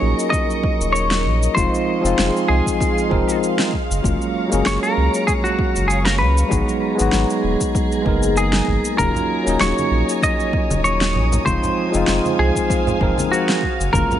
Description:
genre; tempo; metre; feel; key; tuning
sunset chillout; 97 BPM; 4/4; swing 54% on 16ths; Eb minor; A4 = 440 Hz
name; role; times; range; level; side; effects
semi-hollow electric guitar; melody; 0.0-14.2 s; Gb4 to Eb5; -22 LUFS; equal; digital delay
bell-like tine electric piano; accompaniment; 0.0-14.2 s; F3 to Bb4; -21 LUFS; equal; auto-pan, vintage 12-bit sampler grit, tape echo
soft string machine; sustained chords; 0.0-14.2 s; Ab4 to Eb6; -26 LUFS; equal; ensemble chorus
warm sub bass; bass; 0.0-14.1 s; Eb1 to Db2; -20 LUFS; equal; none
electronic cabasa and snare drum; drums; 0.2-14.2 s; none; -24 LUFS; equal; none
electronic kick drum; drums; 0.3-14.1 s; none; -23 LUFS; equal; none
congas; percussion; 9.0-14.2 s; none; -27 LUFS; right 1 dB; none
room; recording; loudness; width
light reverb, digital ambience; nothing above 10.9 kHz; -16 LUFS; side -10 dB against mid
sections
0.0-14.2 A section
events
none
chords
0.0 Ebm7; 1.6 Fm7; 3.7 Gbmaj7; 6.5 Abm9; 9.0 Ebm7; 11.5 Fm7; 13.6 Gbmaj7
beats
0.33 0.95 | 1.57 2.19 2.80 3.42 | 4.04 4.66 5.28 5.90 | 6.52 7.13 7.75 8.37 | 8.99 9.61 10.23 10.85 | 11.46 12.08 12.70 13.32 | 13.94

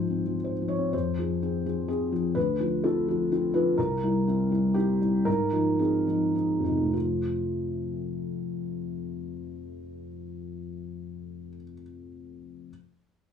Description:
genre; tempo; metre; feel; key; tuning
neoclassical minimalist piano; 100-129 BPM; 3/4; rubato; unclear; A4 = 440 Hz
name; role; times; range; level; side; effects
felt-muted upright piano; solo; 0.0-12.7 s; C2 to Db5; -26 LUFS; left 1 dB; none
room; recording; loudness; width
wet booth ambience, RT60 0.3 s; studio ambience; -24 LUFS; side -8 dB against mid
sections
0.9-6.9 A section; 6.9-10.5 B section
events
slowing down 3.1-6.9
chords
0.0 Ab6; 0.9 Fm; 2.4 Dm7; 3.8 C; 5.3 Ab6; 6.9 F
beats
0.43 | 0.93 1.41 1.88 | 2.36 2.83 3.30 | 3.77 4.26 4.75 | 5.26 5.79 6.35 | 6.94 7.53 8.11 | 8.70 9.29 9.88

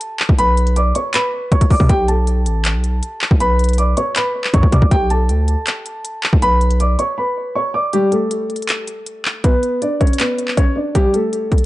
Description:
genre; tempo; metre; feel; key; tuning
hip hop, trap; 159 BPM; 4/4; half-time; B minor; A4 = 440 Hz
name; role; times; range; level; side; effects
dark concert grand piano; melody; 0.0-11.7 s; G3 to D6; -18 LUFS; equal; tape echo
trap drum kit; drums; 0.0-11.6 s; handclaps, hi-hat, kick drum; -16 LUFS; equal; none
distorted 808-style bass; bass; 0.3-7.0 s; A1 to B2; -15 LUFS; equal; distortion
room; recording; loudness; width
light reverb, digital ambience; dark, warm production, nothing above 10.3 kHz; -14 LUFS; side -17 dB against mid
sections
0.0-7.9 A section; 7.9-11.7 B section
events
break 7.2-7.9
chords
0.0 Bm7; 7.9 B7(no3)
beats
0.01 | 0.39 0.76 1.14 1.52 | 1.89 2.27 2.65 3.03 | 3.40 3.78 4.16 4.54 | 4.91 5.29 5.67 6.04 | 6.42 6.80 7.18 7.55 | 7.93 8.31 8.69 9.06 | 9.44 9.82 10.20 10.57 | 10.95 11.33

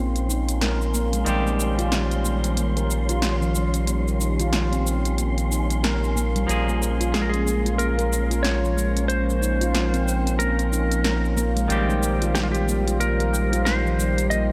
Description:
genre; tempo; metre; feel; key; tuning
organic downtempo; 92 BPM; 4/4; swing 59% on 16ths; unclear; A4 = 440 Hz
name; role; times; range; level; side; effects
semi-hollow electric guitar; accompaniment; 0.0-14.5 s; Eb3 to Ab4; -33 LUFS; equal; shimmer reverb, delay
warm analog pad; sustained chords; 0.0-14.5 s; Eb3 to C5; -32 LUFS; equal; subtle chorus, shimmer reverb
handpan; arpeggios; 0.0-14.5 s; F3 to Bb4; -29 LUFS; equal; low-pass filter, shimmer reverb, delay
round analog bass; bass; 0.0-14.5 s; Bb1; -26 LUFS; equal; none
wind-like tuned noise texture; texture; 0.0-14.5 s; Db4 to C6; -37 LUFS; equal; built-in reverb, shimmer reverb
deep house drum kit; drums; 0.2-14.5 s; cabasa, hi-hat, snare drum; -30 LUFS; equal; none
clean lap steel guitar; melody; 7.1-14.5 s; F4 to Eb5; -30 LUFS; equal; shimmer reverb, delay
room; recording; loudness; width
moderate lush hall reverb, RT60 2.2 s; none; -23 LUFS; mono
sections
0.0-14.5 A section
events
filter sweep on analog synth pad 0.0-14.5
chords
0.0 Bbm7; 1.3 Cm/Bb; 6.5 Bbm7; 11.7 Cm/Bb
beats
0.62 | 1.27 1.92 2.57 3.23 | 3.88 4.53 5.18 5.83 | 6.49 7.14 7.79 8.44 | 9.09 9.75 10.40 11.05 | 11.70 12.36 13.01 13.66 | 14.31

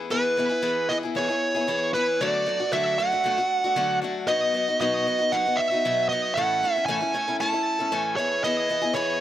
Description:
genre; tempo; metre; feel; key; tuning
rock; 115 BPM; 4/4; straight; E major; A4 = 440 Hz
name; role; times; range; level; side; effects
picked acoustic archtop guitar; accompaniment; 0.0-9.2 s; A2 to A4; -27 LUFS; left 5 dB; none
smooth overdriven lead guitar; melody; 0.1-9.2 s; B4 to A5; -23 LUFS; right 2 dB; analog delay
room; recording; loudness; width
light reverb, small room reverb; none; -22 LUFS; side -12 dB against mid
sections
0.0-9.2 A section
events
none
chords
0.0 E; 2.2 D; 4.3 B; 6.4 A; 8.2 E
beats
| 0.10 0.63 1.15 1.67 | 2.20 2.72 3.24 3.76 | 4.29 4.81 5.33 5.85 | 6.37 6.89 7.41 7.93 | 8.45 8.97

